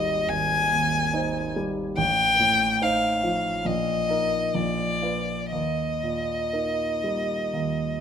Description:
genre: classical, romantic duo for violin and grand piano.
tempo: 59-72 BPM.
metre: 4/4.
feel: rubato.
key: Eb major.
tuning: A4 = 442 Hz.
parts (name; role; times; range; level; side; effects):
rich violin; melody; 0.0-8.0 s; D5 to Ab5; -24 LUFS; left 2 dB; none.
clear grand piano; accompaniment; 0.0-8.0 s; Ab1 to C5; -27 LUFS; right 2 dB; none.
room: moderate recital hall reverb, RT60 1.7 s.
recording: close, detailed microphones.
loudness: -22 LUFS.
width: side -8 dB against mid.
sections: 0.0-8.0 A section.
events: none.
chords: 0.0 Abmaj7; 2.0 F7/A; 3.7 Eb5/Bb; 4.6 Bb; 5.5 Eb.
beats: 0.28 1.14 | 1.98 2.83 3.67 4.56 | 5.54 6.54 7.54.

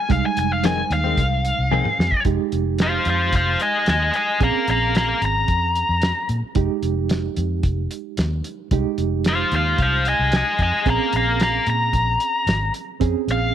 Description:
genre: straight-eighth soul blues.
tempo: 112 BPM.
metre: 4/4.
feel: straight.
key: F minor.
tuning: A4 = 438 Hz.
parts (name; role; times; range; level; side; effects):
biting lead guitar; melody; 0.0-13.5 s; C5 to Bb5; -20 LUFS; left 2 dB; overdrive.
bright reed electric piano; accompaniment; 0.0-13.5 s; G3 to Ab5; -26 LUFS; right 17 dB; fast tremolo.
vintage muted fingered electric bass; bass; 0.1-13.5 s; F1 to Bb2; -23 LUFS; equal; none.
cloth-damped thuddy drum kit; drums; 0.1-13.4 s; hi-hat, kick drum, snare drum, toms; -24 LUFS; equal; none.
direct-recorded clean electric guitar; stabs; 0.6-1.9 s; F2 to C4; -27 LUFS; left 14 dB; spring reverb, slapback echo.
room: light reverb, small room reverb.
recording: 1960s-style stereo with parts hard left and right.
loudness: -18 LUFS.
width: side -10 dB against mid.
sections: 0.0-2.3 A section; 2.3-13.5 B section.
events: lead electric guitar solo 0.0-2.3; reed electric piano fill 1.4-2.3; drum fill 1.7-2.3.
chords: 0.0 Fm7; 4.4 Bbm7; 6.6 Fm7; 10.9 Bbm7.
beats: | 0.10 0.64 1.18 1.71 | 2.25 2.79 3.33 3.87 | 4.41 4.95 5.48 6.02 | 6.56 7.10 7.63 8.17 | 8.71 9.25 9.79 10.32 | 10.86 11.40 11.94 12.48 | 13.02.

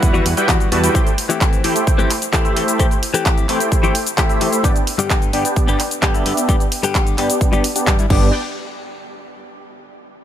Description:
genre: EDM, festival progressive house.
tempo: 130 BPM.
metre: 4/4.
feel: straight.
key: G major.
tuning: A4 = 441 Hz.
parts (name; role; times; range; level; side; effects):
supersaw chords; riff; 0.0-8.3 s; G3 to A5; -20 LUFS; equal; cassette tape, sidechain pumping, low-pass filter, ping-pong delay.
fat analog bass; bass; 0.0-0.9, 8.1-8.3 s; G1 to E2; -19 LUFS; right 1 dB; sidechain pumping.
big-room dance drum kit; drums; 0.0-8.2 s; cabasa, crash cymbal, handclaps, hi-hat; -22 LUFS; equal; none.
electronic kick drum; drums; 0.0-8.2 s; none; -17 LUFS; right 1 dB; none.
direct-recorded clean electric guitar; accompaniment; 0.1-8.3 s; G2 to G4; -22 LUFS; left 5 dB; phaser, sidechain pumping, ping-pong delay.
room: digital ambience.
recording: none.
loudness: -14 LUFS.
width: side -10 dB against mid.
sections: 0.0-8.3 A section; 8.3-10.2 B section.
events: filter sweep on supersaw synth 0.0-8.3.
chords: 0.0 Emadd9; 0.9 C6; 4.6 G; 8.3 N.C..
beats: 0.03 0.49 | 0.95 1.41 1.87 2.33 | 2.80 3.26 3.72 4.18 | 4.64 5.10 5.57 6.03 | 6.49 6.95 7.41 7.87.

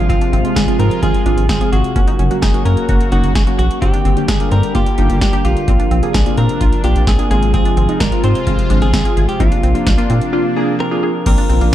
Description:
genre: synth-pop.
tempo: 129 BPM.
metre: 4/4.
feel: straight.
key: unclear.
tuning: A4 = 440 Hz.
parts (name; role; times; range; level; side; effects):
direct-recorded clean electric guitar; melody; 0.0-11.7 s; F4 to C5; -22 LUFS; equal; ping-pong delay.
warm analog keys; accompaniment; 0.0-11.7 s; Ab3 to Ab4; -21 LUFS; right 1 dB; chorus.
sweeping resonant pad; sustained chords; 0.0-11.7 s; C3 to G4; -21 LUFS; left 1 dB; chorus.
wide unison pluck; arpeggios; 0.0-11.7 s; C4 to Ab4; -26 LUFS; left 1 dB; analog chorus, ping-pong delay.
rubbery square bass; bass; 0.0-11.7 s; Gb1 to Bb2; -15 LUFS; equal; none.
electro analog drum machine; drums; 0.1-11.7 s; crash cymbal, hi-hat, kick drum, snare drum; -17 LUFS; equal; none.
room: light reverb.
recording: dark, warm production.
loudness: -12 LUFS.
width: side -12 dB against mid.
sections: 0.0-11.3 A section.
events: break 10.3-11.3.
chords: 0.0 Fm/Ab; 2.0 Gb; 3.8 Gm; 5.7 Bbadd9; 7.3 Fm/Ab; 9.4 Bbadd9.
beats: | 0.10 0.56 1.03 1.49 | 1.96 2.42 2.89 3.35 | 3.82 4.29 4.75 5.21 | 5.68 6.14 6.61 7.08 | 7.54 8.01 8.47 8.94 | 9.40 9.87 10.33 10.80 | 11.26 11.73.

